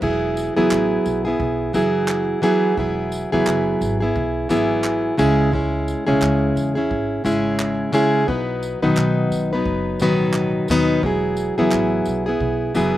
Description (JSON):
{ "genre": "acoustic pop", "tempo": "87 BPM", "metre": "4/4", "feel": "swing 60% on 16ths", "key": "E major", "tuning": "A4 = 442 Hz", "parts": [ { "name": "fingerpicked plugged-in steel-string acoustic guitar", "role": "accompaniment", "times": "0.0-13.0 s", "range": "B2 to B4", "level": "-18 LUFS", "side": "equal", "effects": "none" }, { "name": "upright bass", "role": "bass", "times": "0.0-13.0 s", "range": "E1 to D#2", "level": "-27 LUFS", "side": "right 1 dB", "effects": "none" }, { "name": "unplugged drum kit", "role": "drums", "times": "0.0-12.9 s", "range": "crash cymbal, handclaps, kick drum, tambourine", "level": "-31 LUFS", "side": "right 1 dB", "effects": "none" }, { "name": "group handclap", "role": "percussion", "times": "0.7-11.9 s", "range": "none", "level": "-33 LUFS", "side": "right 2 dB", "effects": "none" } ], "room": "little or no reverb", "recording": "recorded outdoors, with no room sound", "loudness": "-17 LUFS", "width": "side -14 dB against mid", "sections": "0.0-13.0 A section", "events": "none", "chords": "0.0 Eadd9; 5.2 C#m; 8.3 B; 11.0 Eadd9" }